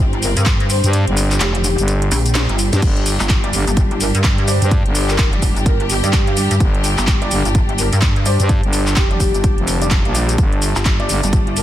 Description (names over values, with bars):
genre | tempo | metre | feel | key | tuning
bass house | 127 BPM | 4/4 | swing 60% on 16ths | unclear | A4 = 440 Hz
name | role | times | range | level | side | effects
rich studio string section | sustained chords | 0.0-11.6 s | D3 to G4 | -26 LUFS | left 1 dB | sidechain pumping
pulsing pluck wobble bass | bass | 0.0-11.6 s | F1 to G2 | -19 LUFS | equal | chorus, sidechain pumping
airy breathy pad | texture | 0.1-11.6 s | D4 to A5 | -27 LUFS | left 1 dB | chorus, sidechain pumping
house drum kit | drums | 0.1-11.6 s | cabasa, crash cymbal, handclaps, hi-hat, snare drum | -21 LUFS | equal | studio reverb
breathy flute-like synth lead | melody | 0.2-11.6 s | G4 to C5 | -26 LUFS | equal | wide subtle chorus, tape echo
electronic kick drum | drums | 0.5-11.4 s | none | -16 LUFS | equal | studio reverb
growling FM bass | bass | 0.8-11.2 s | F1 to G2 | -17 LUFS | equal | sidechain pumping
warm baby grand piano | stabs | 3.4-11.6 s | G3 to F5 | -27 LUFS | right 1 dB | vintage 12-bit sampler grit, sidechain pumping, tape echo
room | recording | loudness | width
little or no reverb | dense, heavily limited modern master | -13 LUFS | side -12 dB against mid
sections
0.0-11.6 A section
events
kick drops out 0.9-2.8; drum fill 2.4-2.8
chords
0.0 G5